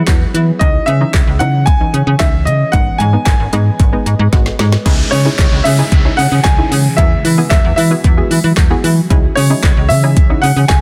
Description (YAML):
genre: dance-pop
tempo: 113 BPM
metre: 4/4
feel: straight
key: C# minor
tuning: A4 = 439 Hz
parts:
  - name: clear baby grand piano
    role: melody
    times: 0.0-10.8 s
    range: C#5 to G#5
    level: -20 LUFS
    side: equal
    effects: digital delay
  - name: ethereal airy pad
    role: sustained chords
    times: 0.0-10.8 s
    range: C#3 to D#5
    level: -27 LUFS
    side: equal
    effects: none
  - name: slap-like FM bass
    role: bass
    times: 0.0-10.8 s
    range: G#1 to E3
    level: -16 LUFS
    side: equal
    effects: sidechain pumping
  - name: punchy chord stab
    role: accompaniment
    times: 0.1-10.7 s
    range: E3 to G#4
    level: -24 LUFS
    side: equal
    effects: chorus, sidechain pumping
  - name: deep house drum kit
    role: drums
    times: 0.1-10.8 s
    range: crash cymbal, handclaps, hi-hat, kick drum, snare drum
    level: -15 LUFS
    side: equal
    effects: none
  - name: downlifter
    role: sound effects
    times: 4.9-9.1 s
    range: none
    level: -27 LUFS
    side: equal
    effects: none
room: little or no reverb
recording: dense, heavily limited modern master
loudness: -12 LUFS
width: mono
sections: 0.0-4.9 A section; 4.9-10.8 B section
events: drum fill 4.3-4.9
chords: 0.0 Eadd9; 0.6 C#madd9; 2.7 G#m; 4.9 C#madd9; 7.0 Eadd9; 9.1 C#madd9